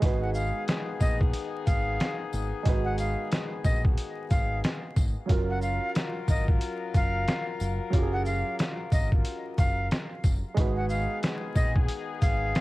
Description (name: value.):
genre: hip hop, boom-bap hip-hop.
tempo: 91 BPM.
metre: 4/4.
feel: swing 60% on 16ths.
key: unclear.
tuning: A4 = 440 Hz.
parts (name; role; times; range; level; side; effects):
dark grand piano; accompaniment; 0.0-12.6 s; F#3 to B4; -36 LUFS; right 5 dB; high-pass filter, low-pass filter, cassette tape.
mellow horn section; stabs; 0.0-12.6 s; D#3 to A#4; -36 LUFS; left 6 dB; high-pass filter, low-pass filter, cassette tape, analog delay.
deep dub fingered electric bass; bass; 0.0-12.5 s; F#1 to A#1; -30 LUFS; equal; none.
trip hop sampler-style drum kit; drums; 0.0-12.6 s; hi-hat, kick drum, shaker, snare drum; -25 LUFS; equal; cassette tape.
breathy bright jazz flute; melody; 0.2-12.6 s; D#5 to F#5; -34 LUFS; equal; high-pass filter, low-pass filter, analog delay.
tambourine; percussion; 0.4-12.4 s; none; -49 LUFS; left 7 dB; none.
room: little or no reverb.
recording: home recording on cassette, vinyl crackle.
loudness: -25 LUFS.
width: side -19 dB against mid.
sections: 0.0-12.6 A section.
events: none.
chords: 0.0 G#m7; 5.3 F#maj7; 10.6 G#m7.